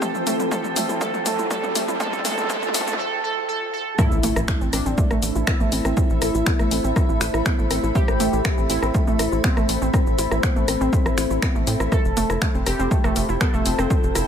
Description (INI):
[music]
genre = melodic techno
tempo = 121 BPM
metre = 4/4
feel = straight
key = A minor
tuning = A4 = 441 Hz
[part]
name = resonant sweep polysynth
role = melody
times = 0.0-14.3 s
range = C4 to A4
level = -27 LUFS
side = equal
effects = chorus, sidechain pumping, dub echo
[part]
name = deep dark ambient pad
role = sustained chords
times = 0.0-14.3 s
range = F3 to C5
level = -31 LUFS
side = left 2 dB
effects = chorus, built-in reverb, sidechain pumping
[part]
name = warbly dusty pluck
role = arpeggios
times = 0.0-14.3 s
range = A3 to E4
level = -27 LUFS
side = right 2 dB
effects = chorus, sidechain pumping, ping-pong delay
[part]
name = electronic kick drum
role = drums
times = 0.0-14.0 s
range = none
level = -22 LUFS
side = equal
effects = overdrive, high-pass filter on kick, studio reverb
[part]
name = house drum kit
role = drums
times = 0.0-14.3 s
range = finger snaps, hi-hat, rim click, shaker, toms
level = -26 LUFS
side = left 2 dB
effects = studio reverb
[part]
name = riser and impact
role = sound effects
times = 0.0-6.0 s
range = none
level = -30 LUFS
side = right 1 dB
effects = none
[part]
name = granular cloud pad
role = texture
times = 0.0-14.3 s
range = F4 to B5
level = -30 LUFS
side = equal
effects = built-in reverb, sidechain pumping
[part]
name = tight sequencer bass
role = bass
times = 4.1-14.2 s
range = F1 to A2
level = -26 LUFS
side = equal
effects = sidechain pumping
[sound]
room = little or no reverb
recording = high-pass filter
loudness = -18 LUFS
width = side -8 dB against mid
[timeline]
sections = 0.0-4.0 A section; 4.0-14.3 B section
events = build-up 0.0-4.0; drum fill 0.0-3.0; riser 0.0-3.0; drop 4.0-14.3; impact 4.0-6.0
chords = 0.0 F; 4.0 Am; 11.9 F